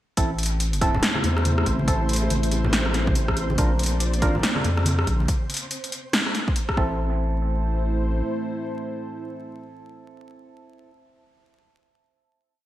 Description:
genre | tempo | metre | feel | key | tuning
deep dubstep | 141 BPM | 4/4 | swing 61% on 16ths, half-time | A phrygian | A4 = 440 Hz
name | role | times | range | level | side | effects
dark analog pad | sustained chords | 1.0-10.9 s | A3 to D5 | -31 LUFS | right 1 dB | chorus
percussive organ stab | stabs | 0.2-10.9 s | C4 to Bb4 | -31 LUFS | right 2 dB | lush chorus, dub echo
saturated sub bass | bass | 0.2-8.2 s | A1 to F2 | -24 LUFS | equal | none
deep house drum kit | drums | 0.2-6.8 s | hi-hat, rim click, snare drum | -25 LUFS | equal | overdrive, gated reverb
electronic kick drum | drums | 0.2-6.9 s | none | -24 LUFS | equal | overdrive
flickering grainy texture | texture | 0.7-7.0 s | C4 to C5 | -36 LUFS | equal | built-in reverb, analog chorus
bongos and congas | percussion | 0.8-5.3 s | none | -30 LUFS | left 1 dB | none
room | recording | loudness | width
light reverb, digital ambience | bright 1980s-style digital production, vinyl crackle | -21 LUFS | side -14 dB against mid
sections
0.2-7.0 drop; 7.0-10.4 final hit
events
drop 0.2-7.0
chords
0.2 Am; 3.6 Bb; 6.8 Am

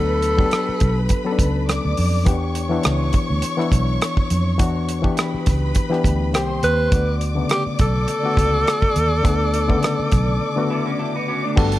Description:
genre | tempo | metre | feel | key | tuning
lush 1970s-style soul | 103 BPM | 4/4 | swing 54% on 16ths | unclear | A4 = 442 Hz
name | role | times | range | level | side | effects
breathy alto saxophone | melody | 0.0-1.1, 6.6-11.0 s | G4 to B4 | -22 LUFS | equal | none
dark studio string section | second line | 0.0-11.8 s | A4 to D6 | -28 LUFS | equal | tape echo
barky reed electric piano | accompaniment | 0.0-11.8 s | C#3 to A4 | -23 LUFS | left 4 dB | overdrive, spring reverb
vintage muted fingered electric bass | bass | 0.0-11.8 s | G1 to F2 | -21 LUFS | right 1 dB | none
warm soul drum kit | drums | 0.2-11.8 s | crash cymbal, hi-hat, kick drum, rim click | -20 LUFS | right 1 dB | none
electric guitar through a small old amp | riff | 10.7-11.7 s | A3 to B4 | -26 LUFS | right 4 dB | none
room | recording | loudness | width
little or no reverb | none | -17 LUFS | side -15 dB against mid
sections
0.0-11.6 A section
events
break 10.4-11.6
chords
0.0 Bm7; 2.3 Em7; 6.3 Cm7; 6.9 Bm7

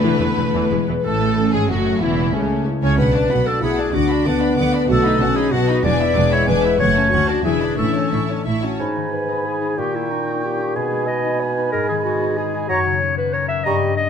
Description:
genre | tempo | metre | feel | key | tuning
classical, dramatic, fast romantic movement for symphony orchestra | 186 BPM | 3/4 | rubato | A major, G# minor from 8.8 s | A4 = 441 Hz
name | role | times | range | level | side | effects
rich symphonic violin section | melody | 0.0-8.8 s | C#4 to D6 | -31 LUFS | right 1 dB | none
flute section | second line | 0.0-0.7, 8.8-13.8 s | B4 to C#6 | -30 LUFS | right 2 dB | none
warm clarinet | second line | 0.0-14.1 s | C#4 to E5 | -22 LUFS | left 1 dB | none
warm symphonic violin section | second line | 0.0-8.8 s | B3 to G#5 | -28 LUFS | left 1 dB | none
rich symphonic viola section | accompaniment | 0.0-8.8 s | C#3 to F#4 | -25 LUFS | right 1 dB | none
mellow French horn section | sustained chords | 0.0-8.8 s | G#3 to F#4 | -24 LUFS | left 3 dB | none
concert harp | arpeggios | 0.0-14.1 s | E2 to A5 | -24 LUFS | left 10 dB | none
warm symphonic cello section | bass | 0.0-8.7 s | C#2 to D3 | -24 LUFS | right 3 dB | none
warm symphonic double bass section | bass | 0.0-8.7 s | E1 to D2 | -24 LUFS | right 4 dB | none
warm oboe | second line | 8.8-13.8 s | G5 to A#5 | -28 LUFS | right 3 dB | none
mellow bassoon | accompaniment | 8.8-13.9 s | G#2 to G#3 | -24 LUFS | right 3 dB | none
room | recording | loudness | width
moderate scoring stage reverb, RT60 1.5 s | close, detailed microphones | -16 LUFS | side -7 dB against mid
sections
0.0-1.1 A section; 1.1-8.8 B section; 8.8-14.1 C section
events
none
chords
0.0 Esus4; 0.7 E; 1.1 A; 2.0 A/E; 3.0 Bm7; 3.9 Bm/D; 4.9 B7; 5.8 E7; 6.8 F#m; 7.1 Dmaj7; 7.4 E7; 7.8 A; 8.8 G#m; 9.8 D#7/A#; 10.8 G#m/B; 11.7 G#m; 12.7 F#

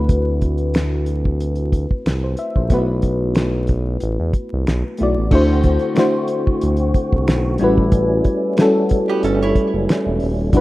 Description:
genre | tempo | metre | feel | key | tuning
R&B, neo-soul | 92 BPM | 4/4 | swing 54% on 16ths | unclear | A4 = 440 Hz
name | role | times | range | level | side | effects
mellow FM electric piano | accompaniment | 0.0-10.6 s | F#3 to E5 | -19 LUFS | left 1 dB | chorus
smooth synth bass | bass | 0.0-10.6 s | D#1 to E2 | -19 LUFS | equal | none
cloth-damped thuddy drum kit | drums | 0.1-10.6 s | crash cymbal, finger snaps, hi-hat, kick drum, snare drum | -18 LUFS | equal | none
percussive tonewheel organ | sustained chords | 5.3-10.6 s | D3 to F#4 | -25 LUFS | right 2 dB | overdrive, chorus vibrato, slow rotary speaker
archtop guitar, miked and amplified | second line | 9.1-10.4 s | B3 to C#5 | -24 LUFS | right 6 dB | tape echo
room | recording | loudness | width
light reverb, small room ambience | rough home demo mix, vinyl crackle | -15 LUFS | side -17 dB against mid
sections
0.0-5.3 A section; 5.3-10.6 B section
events
none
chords
0.0 D13; 2.7 B7sus4; 5.3 D7; 7.6 A13

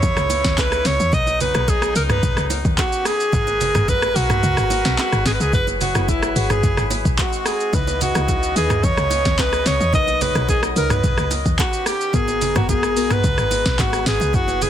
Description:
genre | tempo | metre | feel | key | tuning
amapiano | 109 BPM | 4/4 | straight | G# minor | A4 = 440 Hz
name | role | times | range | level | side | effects
breathy alto saxophone | melody | 0.0-14.7 s | E4 to D#5 | -21 LUFS | equal | ping-pong delay
warm brass ensemble | sustained chords | 0.0-14.7 s | C#3 to A#5 | -28 LUFS | left 1 dB | sidechain pumping
woody log drum bass | bass | 0.0-14.7 s | F#1 to E2 | -23 LUFS | equal | none
smooth R&B drum kit | drums | 0.0-14.7 s | handclaps, hi-hat, kick drum, rim click, shaker, snare drum, toms | -21 LUFS | equal | overdrive, vintage 12-bit sampler grit
congas and bongos | percussion | 0.0-14.7 s | none | -30 LUFS | right 7 dB | none
deep mellow chord stab | stabs | 5.5-14.7 s | B3 to B4 | -28 LUFS | left 3 dB | chorus, phaser, ping-pong delay
room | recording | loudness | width
digital ambience | dense, heavily limited modern master | -16 LUFS | side -10 dB against mid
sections
0.0-14.7 A section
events
kick muted 4.4-5.5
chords
0.0 C#m9; 1.1 B; 2.8 D#7alt; 3.3 G#m9; 5.5 F#9sus4; 7.2 G#7; 7.7 C#m9; 9.9 Bmaj7; 11.6 D#7alt; 12.1 G#m9

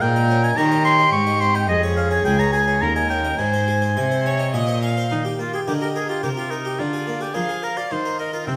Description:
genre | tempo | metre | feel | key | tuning
classical, baroque-style sonata movement with continuo | 107 BPM | 3/4 | straight | Ab major, Eb major from 5.1 s | A4 = 440 Hz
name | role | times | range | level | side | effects
clear oboe | melody | 0.0-8.5 s | C4 to Db6 | -24 LUFS | equal | none
rich violin | second line | 0.0-8.6 s | G4 to G5 | -28 LUFS | equal | none
harpsichord | accompaniment | 0.0-8.6 s | Db2 to Ab5 | -30 LUFS | equal | none
rich cello | bass | 0.0-8.6 s | Db2 to F3 | -25 LUFS | equal | none
room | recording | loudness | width
wet recital hall reverb, RT60 1.5 s | none | -20 LUFS | mono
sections
0.0-5.1 A section; 5.1-8.6 A section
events
none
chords
0.0 Eb7/Bb; 1.1 Ab; 1.7 Db/F; 2.8 Eb7; 3.4 Ab; 5.1 Eb; 6.8 Bb7/D; 7.9 Eb5

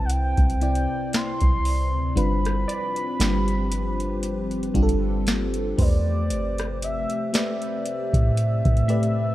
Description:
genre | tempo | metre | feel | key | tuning
contemporary R&B | 58 BPM | 4/4 | swing 54% on 16ths | unclear | A4 = 441 Hz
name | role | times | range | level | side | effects
gliding portamento lead | melody | 0.0-9.3 s | D5 to C6 | -29 LUFS | equal | chorus
FM electric piano with soft pad layer | accompaniment | 0.0-9.3 s | C3 to D5 | -28 LUFS | left 1 dB | chorus
deep dark ambient pad | sustained chords | 0.0-9.3 s | C3 to G4 | -33 LUFS | left 2 dB | chorus, built-in reverb
soft 808-style bass | bass | 0.0-9.3 s | G1 to A2 | -24 LUFS | equal | none
glassy wavetable pluck | texture | 0.0-9.3 s | D5 to E6 | -39 LUFS | right 2 dB | chorus, digital delay
booming analog drum machine | drums | 0.1-9.2 s | hi-hat, kick drum, rim click, snare drum | -24 LUFS | equal | none
room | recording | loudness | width
light reverb | dark, warm production | -21 LUFS | side -15 dB against mid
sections
0.0-9.3 A section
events
none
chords
0.0 Cmaj7; 2.2 G7; 5.8 Am9

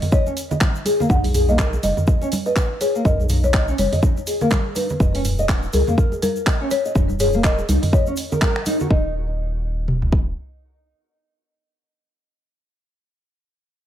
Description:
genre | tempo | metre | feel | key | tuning
afro house | 123 BPM | 4/4 | swing 58% on 16ths | Eb minor | A4 = 438 Hz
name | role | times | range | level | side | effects
folk marimba with medium mallets | melody | 0.0-13.3 s | A#4 to F#5 | -26 LUFS | left 3 dB | digital delay
house drum kit | drums | 0.0-8.8 s | finger snaps, handclaps, hi-hat, toms | -25 LUFS | equal | none
congas | percussion | 0.0-8.9 s | none | -27 LUFS | right 3 dB | none
egg shaker | percussion | 0.0-8.9 s | none | -37 LUFS | left 3 dB | none
nylon-string guitar | arpeggios | 0.1-9.1 s | Bb3 to Eb5 | -24 LUFS | equal | sidechain pumping, digital delay
house drum kit | drums | 0.1-10.3 s | kick drum, toms | -18 LUFS | equal | none
round analog bass | bass | 1.1-10.3 s | Eb1 to Db2 | -22 LUFS | equal | sidechain pumping
room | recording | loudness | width
small room ambience | none | -17 LUFS | side -11 dB against mid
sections
0.0-8.9 A section; 8.9-12.8 B section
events
drop 0.0-8.9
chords
0.0 N.C.; 1.1 Bmaj7; 5.0 Eb7(no3); 8.9 N.C.

